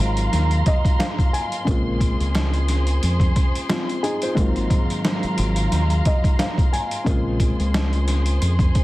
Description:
hip hop, boom-bap hip-hop; 89 BPM; 4/4; swing 55% on 16ths; Bb minor; A4 = 438 Hz
dark upright piano; accompaniment; 0.0-8.8 s; Ab2 to Ab5; -26 LUFS; left 1 dB; cassette tape, high-pass filter, low-pass filter
warm studio string section; sustained chords; 0.0-8.8 s; Gb3 to C6; -28 LUFS; right 1 dB; high-pass filter, low-pass filter
deep dub fingered electric bass; bass; 0.0-8.7 s; Ab1 to F2; -20 LUFS; equal
trip hop sampler-style drum kit; drums; 0.2-8.8 s; hi-hat, kick drum, snare drum; -21 LUFS; equal
finger snap; percussion; 1.0-7.9 s; -36 LUFS; right 7 dB
small room ambience; dense, heavily limited modern master, vinyl crackle; -18 LUFS; side -18 dB against mid
0.0-8.8 A section
0.0 Ab13; 1.7 Bbm9; 4.4 Ab13; 7.1 Bbm9

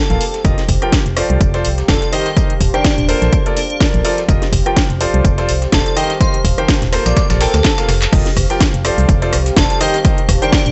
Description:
piano house; 125 BPM; 4/4; swing 56% on 16ths; F mixolydian; A4 = 440 Hz
airy dreamy lead; melody; 0.0-10.7 s; D4 to D5; -24 LUFS; equal; chorus, digital delay
deep dark ambient pad; texture; 0.3-10.7 s; G4 to A5; -29 LUFS; equal; chorus, built-in reverb, sidechain pumping
clear baby grand piano; riff; 0.1-10.6 s; Eb3 to G5; -22 LUFS; equal; sidechain pumping, digital delay
organ-like FM bass; bass; 0.1-10.7 s; Eb1 to D2; -19 LUFS; equal; sidechain pumping
house drum kit; drums; 0.1-10.7 s; cabasa, crash cymbal, handclaps, hi-hat, rim click, snare drum; -23 LUFS; equal; overdrive
electronic tambourine and snare drum; drums; 0.2-10.7 s; -29 LUFS; equal; high-pass filter on snare, high-pass filter on perc
electronic kick drum; drums; 0.4-10.6 s; -18 LUFS; equal; overdrive
light reverb, digital ambience; nothing above 8.0 kHz, faint mains hum; -14 LUFS; mono
0.0-8.1 A section; 8.1-10.7 B section
drum fill 7.6-8.1; drop 8.1-10.7
0.4 F9sus4; 1.4 Dm7/F; 2.1 Eb6; 3.3 Bbmaj7; 4.3 F9sus4; 5.2 Dm7/F; 6.0 Eb6; 7.2 Bbmaj7; 8.1 F9sus4; 9.1 Dm7/F; 9.8 Eb6

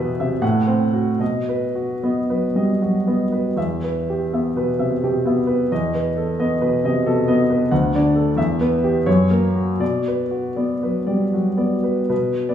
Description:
classical, romantic character piece for solo piano; 72-93 BPM; 3/4; rubato; B minor from 7.7 s; A4 = 440 Hz
clear grand piano; solo; 0.0-12.5 s; D2 to F#5; -17 LUFS; equal
wet recital hall reverb, RT60 1.7 s; recorded in a church or concert hall, studio reverb; -17 LUFS; side -9 dB against mid
0.0-12.1 A section
0.4 F#dim/A; 1.2 B; 3.6 Em; 5.7 B7/E; 7.7 D; 8.4 Em; 9.1 F#; 9.8 Bm

